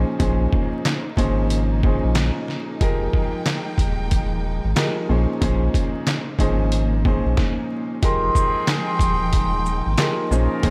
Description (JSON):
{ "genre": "hip hop, boom-bap hip-hop", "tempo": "92 BPM", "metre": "4/4", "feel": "swing 63% on 16ths", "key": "F minor", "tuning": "A4 = 443 Hz", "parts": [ { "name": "clear upright piano", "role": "accompaniment", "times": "0.0-10.7 s", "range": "Bb2 to C5", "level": "-27 LUFS", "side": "equal", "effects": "none" }, { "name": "warm studio string section", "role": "sustained chords", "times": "0.0-10.7 s", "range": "Db3 to G5", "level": "-34 LUFS", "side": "equal", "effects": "none" }, { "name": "warm sub bass", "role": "bass", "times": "0.0-10.7 s", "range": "Eb1 to Bb1", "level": "-24 LUFS", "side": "equal", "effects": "none" }, { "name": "trip hop sampler-style drum kit", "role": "drums", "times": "0.2-10.7 s", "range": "handclaps, hi-hat, kick drum, shaker, snare drum", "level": "-24 LUFS", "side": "equal", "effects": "none" }, { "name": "vibraphone with soft mallets", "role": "melody", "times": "8.0-10.6 s", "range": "Ab5 to C6", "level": "-26 LUFS", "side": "equal", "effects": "none" }, { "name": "mellow trumpet section", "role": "stabs", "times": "8.0-10.7 s", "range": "C4 to Bb4", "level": "-33 LUFS", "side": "equal", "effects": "tape echo" } ], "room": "small room ambience", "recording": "vinyl crackle", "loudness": "-21 LUFS", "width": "mono", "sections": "0.0-8.0 A section; 8.0-10.7 B section", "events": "stop 7.4-8.0", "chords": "0.0 Bbm11; 2.8 Fm11; 5.1 Bbm11; 8.0 Fm11", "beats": "| 0.20 0.85 1.50 2.16 | 2.81 3.46 4.11 4.77 | 5.42 6.07 6.72 7.38 | 8.03 8.68 9.33 9.98 | 10.63" }